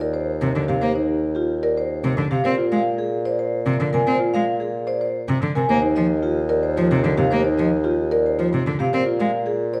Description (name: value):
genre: classical, minimalist pattern music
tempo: 111 BPM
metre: 3/4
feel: straight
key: unclear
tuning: A4 = 440 Hz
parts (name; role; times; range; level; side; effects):
- vibraphone with soft mallets; melody; 0.0-9.8 s; G4 to Ab5; -28 LUFS; equal; none
- marimba with soft mallets; arpeggios; 0.0-9.8 s; Eb4 to C5; -26 LUFS; equal; none
- mellow bassoon; bass; 0.0-9.8 s; Eb2 to Bb2; -27 LUFS; equal; none
- rich cello; accompaniment; 0.4-9.3 s; C3 to C4; -24 LUFS; equal; none
room: moderate recital hall reverb, RT60 1.5 s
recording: dark, warm production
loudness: -21 LUFS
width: mono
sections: 0.0-9.8 A section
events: none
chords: 0.0 Eb; 2.4 Bb7(no3); 5.7 Ebsus2; 8.9 Bb7(no3)